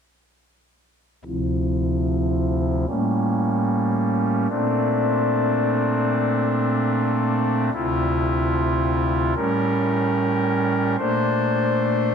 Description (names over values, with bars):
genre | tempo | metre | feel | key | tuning
hip hop | free time | none | none | D minor | A4 = 440 Hz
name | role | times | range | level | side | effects
pipe organ, foundations | solo | 1.2-12.1 s | D2 to C5 | -19 LUFS | equal | low-pass filter
room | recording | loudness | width
light reverb, studio reverb | faint mains hum | -19 LUFS | side -7 dB against mid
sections
1.2-7.7 A section; 7.7-12.1 B section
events
filter sweep on pipe organ 1.2-7.7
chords
1.2 Dm9; 2.9 A7b9; 4.5 Bbmaj9; 7.7 Dm9; 9.4 A7b9; 11.0 Bbmaj9